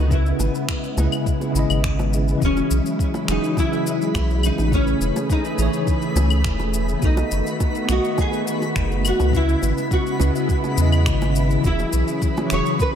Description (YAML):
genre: sunset chillout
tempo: 104 BPM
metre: 4/4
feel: straight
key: E major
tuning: A4 = 440 Hz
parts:
  - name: nylon-string guitar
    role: melody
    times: 0.0-13.0 s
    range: C#4 to C#5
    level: -26 LUFS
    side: left 1 dB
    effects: ensemble chorus, diffuse ambient delay
  - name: bell-like tine electric piano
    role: accompaniment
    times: 0.0-13.0 s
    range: C#3 to D#5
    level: -25 LUFS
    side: left 1 dB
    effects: medium stereo tremolo, auto-pan, ping-pong delay
  - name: soft string machine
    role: sustained chords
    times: 0.0-13.0 s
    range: C#3 to G#4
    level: -26 LUFS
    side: equal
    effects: ensemble chorus
  - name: warm sub bass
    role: bass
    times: 0.0-12.6 s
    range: E1 to E2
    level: -20 LUFS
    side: equal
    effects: none
  - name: electronic kick drum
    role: drums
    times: 0.1-12.9 s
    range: none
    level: -22 LUFS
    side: equal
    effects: none
  - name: electronic shaker, finger snaps and claves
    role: drums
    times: 0.1-12.9 s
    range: none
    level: -30 LUFS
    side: left 4 dB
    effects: none
  - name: bongos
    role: percussion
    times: 0.4-12.9 s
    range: none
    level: -32 LUFS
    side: right 3 dB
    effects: none
  - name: twinkling granular texture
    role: texture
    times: 2.8-13.0 s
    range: B4 to B5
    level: -33 LUFS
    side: left 2 dB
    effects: built-in reverb
room: light reverb, digital ambience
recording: none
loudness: -18 LUFS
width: side -8 dB against mid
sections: 0.0-2.4 A section; 2.4-13.0 A section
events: filter sweep on tine electric piano 0.0-2.4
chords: 0.1 C#m7; 2.4 E69; 4.7 Amaj7; 7.0 B7; 9.3 C#m7; 11.6 E69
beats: | 0.10 0.68 1.26 1.83 | 2.41 2.99 3.56 4.14 | 4.72 5.30 5.87 6.45 | 7.03 7.60 8.18 8.76 | 9.33 9.91 10.49 11.06 | 11.64 12.22 12.80